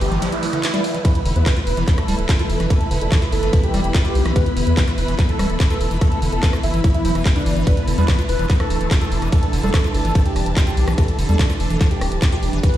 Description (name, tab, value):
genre	psychedelic trance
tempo	145 BPM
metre	4/4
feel	straight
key	E phrygian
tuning	A4 = 440 Hz
part	wide unison lead	melody	0.0-12.8 s	D4 to B4	-26 LUFS	equal	phaser, sidechain pumping, tape echo
part	evolving wavetable pad	sustained chords	0.0-12.8 s	E3 to D4	-28 LUFS	right 1 dB	ensemble chorus, built-in reverb, phaser, sidechain pumping
part	round analog bass	bass	0.0-12.6 s	D1 to E2	-20 LUFS	equal	none
part	garage drum kit	drums	0.0-12.8 s	handclaps, hi-hat, ride cymbal, rim click	-28 LUFS	equal	none
part	noise sweep	sound effects	0.0-1.0 s	none	-30 LUFS	right 5 dB	none
part	dark studio string section	texture	0.0-12.8 s	E4 to B5	-29 LUFS	right 2 dB	sidechain pumping
part	liquid acid bass	riff	0.1-12.7 s	D3 to F4	-26 LUFS	equal	chorus, auto-pan, sidechain pumping, tape echo
part	electronic kick drum	drums	1.0-12.7 s	none	-16 LUFS	equal	none
part	vowel-sweep wobble bass	second line	1.4-3.2, 8.0-9.8 s	A3 to D4	-37 LUFS	left 2 dB	none
room	light reverb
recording	played on a big sound system in a bare room, stone room reverb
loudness	-16 LUFS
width	side -12 dB against mid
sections	0.0-12.8 A section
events	noise sweep 0.0-1.0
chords	0.0 E5